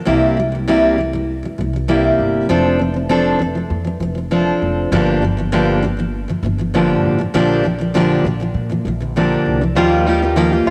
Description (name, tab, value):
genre	acoustic pop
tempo	99 BPM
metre	4/4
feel	straight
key	F major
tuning	A4 = 437 Hz
part	fingerpicked steel-string acoustic guitar	accompaniment	0.0-10.7 s	G2 to A4	-18 LUFS	equal	none
part	upright bass	bass	0.1-10.7 s	F1 to Bb2	-24 LUFS	equal	none
part	bluegrass banjo	arpeggios	9.8-10.7 s	G3 to F4	-23 LUFS	equal	none
room	moderate lush hall reverb, RT60 2.5 s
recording	home recording on cassette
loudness	-17 LUFS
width	mono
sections	0.0-9.8 A section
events	none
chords	0.1 C7; 2.5 F6; 4.9 Gm7; 7.3 Bb6; 9.8 Ebadd9